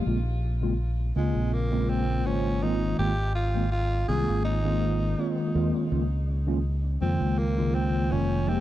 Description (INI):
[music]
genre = vaporwave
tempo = 82 BPM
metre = 4/4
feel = straight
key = unclear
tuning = A4 = 440 Hz
[part]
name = mellow tine electric piano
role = accompaniment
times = 0.0-8.6 s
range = Db3 to C5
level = -28 LUFS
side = equal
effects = medium stereo tremolo, analog chorus
[part]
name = fingered electric bass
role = bass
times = 0.1-8.6 s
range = F1 to F2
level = -27 LUFS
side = equal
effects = none
[part]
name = raspy tenor saxophone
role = melody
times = 1.2-8.6 s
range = Ab3 to Ab4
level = -33 LUFS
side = right 1 dB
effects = vintage 12-bit sampler grit, tape echo
[sound]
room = small room ambience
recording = dark, warm production, cassette tape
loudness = -24 LUFS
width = side -14 dB against mid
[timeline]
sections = 0.0-8.6 A section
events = none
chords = 0.1 Bbm9; 2.6 Ab69; 5.9 Db69